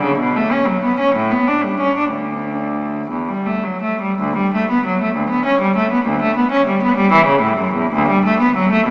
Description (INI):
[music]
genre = classical, baroque-style suite movement for unaccompanied cello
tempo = 52-67 BPM (dotted quarters)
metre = 6/8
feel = rubato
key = D major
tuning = A4 = 440 Hz
[part]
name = rich cello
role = solo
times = 0.0-8.9 s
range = D2 to D4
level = -17 LUFS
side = equal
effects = none
[sound]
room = wet church reverb, RT60 3.5 s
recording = recorded in a church or concert hall, small speaker sound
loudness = -17 LUFS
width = mono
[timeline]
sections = 0.0-4.2 A section; 4.2-8.9 B section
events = none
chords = none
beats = | 0.19 1.15 | 2.12 3.12 | 4.20 5.17 | 6.08 6.98 | 7.93 8.88